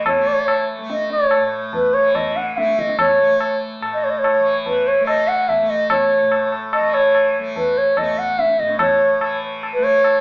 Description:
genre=indian classical, Hindustani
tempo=144 BPM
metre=7/4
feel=straight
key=A raga yaman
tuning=A4 = 440 Hz
part: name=bansuri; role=melody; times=0.0-10.2 s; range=B4 to F#5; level=-16 LUFS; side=equal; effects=none
part: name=tanpura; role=drone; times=0.0-10.2 s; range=A2 to A3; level=-27 LUFS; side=equal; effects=none
part: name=tabla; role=percussion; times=0.1-10.2 s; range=none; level=-24 LUFS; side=left 1 dB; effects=none
room=moderate large studio reverb, RT60 0.8 s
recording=band playing live in one room, AM radio sound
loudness=-15 LUFS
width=side -25 dB against mid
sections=0.0-10.2 A section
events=none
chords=none

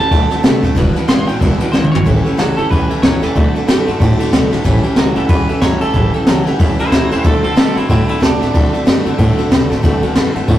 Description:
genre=rockabilly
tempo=185 BPM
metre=4/4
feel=swing 60% on 8ths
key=unclear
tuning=A4 = 440 Hz
part: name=twangy electric guitar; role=melody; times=0.0-9.2 s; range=C4 to C6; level=-22 LUFS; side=right 2 dB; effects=analog delay
part: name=picked steel-string acoustic guitar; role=accompaniment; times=0.0-10.6 s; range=A2 to B4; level=-19 LUFS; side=left 1 dB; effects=none
part: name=twangy electric guitar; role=riff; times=0.0-10.6 s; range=E2 to B3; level=-22 LUFS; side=right 2 dB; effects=none
part: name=upright bass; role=bass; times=0.0-10.6 s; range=E1 to C3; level=-18 LUFS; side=equal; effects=none
part: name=jazz brush drum kit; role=drums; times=0.1-10.6 s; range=kick drum, ride cymbal, snare drum, toms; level=-14 LUFS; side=equal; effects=none
room=moderate stone room reverb, RT60 1.2 s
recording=rough rehearsal-room recording, tube saturation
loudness=-11 LUFS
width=side -13 dB against mid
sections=0.0-2.1 A section; 2.1-10.6 B section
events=clean electric guitar solo 0.0-2.1; drum fill 1.7-2.1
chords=0.1 D7; 0.8 E7; 2.1 A7; 3.4 D7; 4.7 A7; 7.2 D7

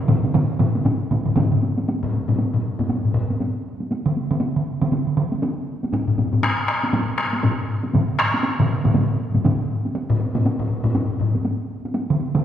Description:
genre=japanese traditional, taiko drum ensemble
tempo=119 BPM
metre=4/4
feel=swing 60% on 16ths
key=none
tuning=none
part: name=solo taiko drums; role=percussion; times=0.1-12.4 s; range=none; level=-22 LUFS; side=right 3 dB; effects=none
part: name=taiko ensemble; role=percussion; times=0.1-12.4 s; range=none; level=-25 LUFS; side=equal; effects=none
part: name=taiko ensemble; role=percussion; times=0.1-11.3 s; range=none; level=-21 LUFS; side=left 2 dB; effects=none
room=wet scoring stage reverb, RT60 1.9 s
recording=recorded in a church or concert hall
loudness=-19 LUFS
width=side -10 dB against mid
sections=0.0-1.9 A section; 1.9-12.4 B section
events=none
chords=none

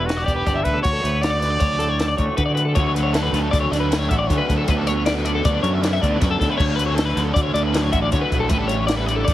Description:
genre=math rock and midwest emo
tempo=157 BPM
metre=5/4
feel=straight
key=D major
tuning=A4 = 440 Hz
part: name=brilliant trumpet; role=melody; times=0.0-2.4 s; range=F#4 to D5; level=-25 LUFS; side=right 1 dB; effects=none
part: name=electric guitar through a small old amp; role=accompaniment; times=0.0-9.3 s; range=D2 to F#4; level=-28 LUFS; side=right 5 dB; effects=tremolo
part: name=twelve-string electric guitar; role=arpeggios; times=0.0-9.3 s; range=A4 to E5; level=-24 LUFS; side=left 4 dB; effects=harmonic tremolo, analog delay
part: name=growling fingered electric bass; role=bass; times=0.0-9.3 s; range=E1 to D3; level=-23 LUFS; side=equal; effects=overdrive
part: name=compact cocktail drum kit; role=drums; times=0.1-9.3 s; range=crash cymbal, hi-hat, kick drum, snare drum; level=-23 LUFS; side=equal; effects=none
part: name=overdriven electric guitar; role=riff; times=2.8-9.3 s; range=A2 to E4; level=-26 LUFS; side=right 1 dB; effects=none
room=light reverb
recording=heavily compressed radio sound, lossy compression artefacts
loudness=-17 LUFS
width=side -13 dB against mid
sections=0.0-2.8 A section; 2.8-9.3 B section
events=none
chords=0.0 Em7; 0.8 Dmaj7; 4.7 Bm9/D; 6.6 Dmaj7; 8.5 A7sus4

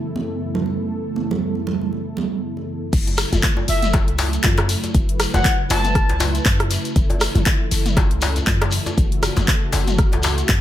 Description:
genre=afro house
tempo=119 BPM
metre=4/4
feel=swing 57% on 16ths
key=F# minor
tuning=A4 = 440 Hz
part: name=warm analog pad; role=sustained chords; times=0.0-10.6 s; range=F#2 to B4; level=-27 LUFS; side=right 1 dB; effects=chorus, vintage 12-bit sampler grit, sidechain pumping
part: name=congas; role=percussion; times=0.2-2.7 s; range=none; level=-24 LUFS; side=right 5 dB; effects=none
part: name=warm 808-style bass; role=bass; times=2.9-10.6 s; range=F#1 to F#2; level=-22 LUFS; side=equal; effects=sidechain pumping
part: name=deep house drum kit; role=drums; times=2.9-10.6 s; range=crash cymbal, handclaps, hi-hat, rim click, toms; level=-23 LUFS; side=left 1 dB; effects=none
part: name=electronic kick drum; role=drums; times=2.9-10.6 s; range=none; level=-19 LUFS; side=equal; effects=none
part: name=shekere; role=percussion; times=2.9-10.6 s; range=none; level=-30 LUFS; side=left 2 dB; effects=none
part: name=djembe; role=percussion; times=3.1-10.4 s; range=none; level=-25 LUFS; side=left 3 dB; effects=none
part: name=expressive synth lead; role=melody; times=3.7-6.1 s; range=E5 to A5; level=-24 LUFS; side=left 1 dB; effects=lush chorus, digital delay
room=digital ambience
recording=none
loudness=-17 LUFS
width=side -12 dB against mid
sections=0.0-2.9 A section; 2.9-10.6 B section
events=drop 2.9-10.6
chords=0.0 A/F#; 2.9 F#m7

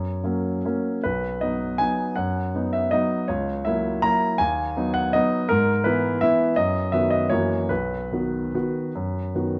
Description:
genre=classical, piano waltz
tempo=140-176 BPM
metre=3/4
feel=rubato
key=B major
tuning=A4 = 441 Hz
part: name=clear baby grand piano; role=solo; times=0.0-9.6 s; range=B1 to A#5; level=-23 LUFS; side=equal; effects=none
room=moderate recital hall reverb, RT60 1.7 s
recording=dark, warm production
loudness=-23 LUFS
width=mono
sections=0.0-9.6 A section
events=none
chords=0.0 F#; 1.0 B; 3.3 F#7/C#; 4.4 B/D#; 5.5 E/G#; 6.6 B/F#; 7.3 F#7; 7.7 B

